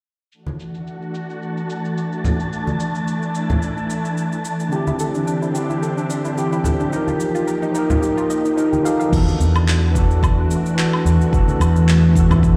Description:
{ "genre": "sunset chillout", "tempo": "109 BPM", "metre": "4/4", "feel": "swing 54% on 16ths", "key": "E minor", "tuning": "A4 = 441 Hz", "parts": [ { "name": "soft string machine", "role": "sustained chords", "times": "0.3-12.6 s", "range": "E3 to G4", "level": "-27 LUFS", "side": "equal", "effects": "ensemble chorus" }, { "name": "deep house drum kit", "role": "drums", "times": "0.3-12.6 s", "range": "cabasa, crash cymbal, handclaps, woodblock", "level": "-31 LUFS", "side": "equal", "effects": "low-pass filter on perc, studio ambience, low-pass filter on cymbals, low-pass filter on snare" }, { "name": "wind-like tuned noise texture", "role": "texture", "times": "1.4-9.1 s", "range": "A5", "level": "-34 LUFS", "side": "equal", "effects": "built-in reverb" }, { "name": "congas", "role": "percussion", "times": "0.5-12.4 s", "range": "none", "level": "-25 LUFS", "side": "equal", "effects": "none" }, { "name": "overdriven tine electric piano", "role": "accompaniment", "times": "4.7-12.6 s", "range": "D3 to Bb4", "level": "-24 LUFS", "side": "equal", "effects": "tape echo" }, { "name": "soft round pluck", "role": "arpeggios", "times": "4.7-9.1 s", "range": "D4 to F5", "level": "-26 LUFS", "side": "equal", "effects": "chorus, cassette tape, tape echo" }, { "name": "mellow fretless electric bass", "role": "bass", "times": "9.1-12.6 s", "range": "E2", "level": "-17 LUFS", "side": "equal", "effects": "none" }, { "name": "electronic kick drum", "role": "drums", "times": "9.1-12.6 s", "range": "none", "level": "-20 LUFS", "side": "equal", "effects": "studio ambience" } ], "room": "moderate scoring stage reverb, RT60 2.0 s", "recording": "played on a big sound system in a bare room, large studio reverb", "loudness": "-19 LUFS", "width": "mono", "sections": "0.3-9.1 A section; 9.1-12.6 B section", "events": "none", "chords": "0.3 E9sus4; 4.7 D9sus4; 6.9 F9sus4; 9.1 E9sus4" }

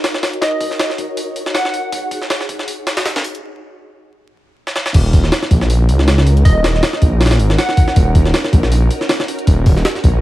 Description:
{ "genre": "drum and bass, jungle", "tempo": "159 BPM", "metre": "4/4", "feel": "swing 55% on 16ths", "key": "Eb minor", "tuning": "A4 = 440 Hz", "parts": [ { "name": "soft string machine", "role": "sustained chords", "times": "0.0-10.2 s", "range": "Db4 to Db5", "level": "-25 LUFS", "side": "equal", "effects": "ensemble chorus" }, { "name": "jungle sampler-style drum kit", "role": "drums", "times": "0.0-10.1 s", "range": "crash cymbal, hi-hat, kick drum, snare drum", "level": "-14 LUFS", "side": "equal", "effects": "high-pass filter on hats, small room ambience, high-pass filter on kick, high-pass filter on snare, high-pass filter on cymbals" }, { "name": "plucky unison lead", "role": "melody", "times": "0.4-2.1, 6.4-8.1 s", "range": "Eb5 to Gb5", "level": "-22 LUFS", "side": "right 1 dB", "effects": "cassette tape, dub echo" }, { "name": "detuned saw bass", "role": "bass", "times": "4.9-10.2 s", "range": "Eb1 to Db2", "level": "-13 LUFS", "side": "equal", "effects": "none" } ], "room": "little or no reverb", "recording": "vinyl crackle", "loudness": "-12 LUFS", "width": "side -16 dB against mid", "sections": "0.0-4.9 A section; 4.9-10.2 B section", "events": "build-up 0.0-4.9; filter sweep on string machine 0.0-4.9; break 3.4-4.9; drum fill 4.7; drop 4.9-10.2", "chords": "0.0 Ebm7" }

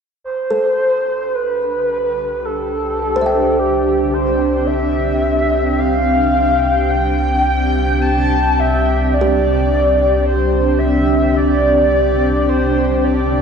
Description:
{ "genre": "ambient", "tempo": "54 BPM", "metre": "4/4", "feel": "straight", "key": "C major", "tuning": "A4 = 437 Hz", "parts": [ { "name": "breathy flute-like synth lead", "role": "melody", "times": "0.2-13.4 s", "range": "G4 to A5", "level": "-17 LUFS", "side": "equal", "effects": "tremolo, lush chorus, diffuse ambient delay" }, { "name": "granular cloud pad", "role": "sustained chords", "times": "1.7-13.4 s", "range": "C4 to G5", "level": "-18 LUFS", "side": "equal", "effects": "built-in reverb" }, { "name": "round analog bass", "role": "bass", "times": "0.2-13.4 s", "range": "C2", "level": "-20 LUFS", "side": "equal", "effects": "none" }, { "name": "kalimba", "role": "arpeggios", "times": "0.5-10.7 s", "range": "G4 to G5", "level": "-24 LUFS", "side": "equal", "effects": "diffuse ambient delay" } ], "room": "wet concert hall reverb, RT60 2.3 s", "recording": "none", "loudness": "-13 LUFS", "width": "side -6 dB against mid", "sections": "0.2-13.4 A section", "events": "none", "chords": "0.2 C5" }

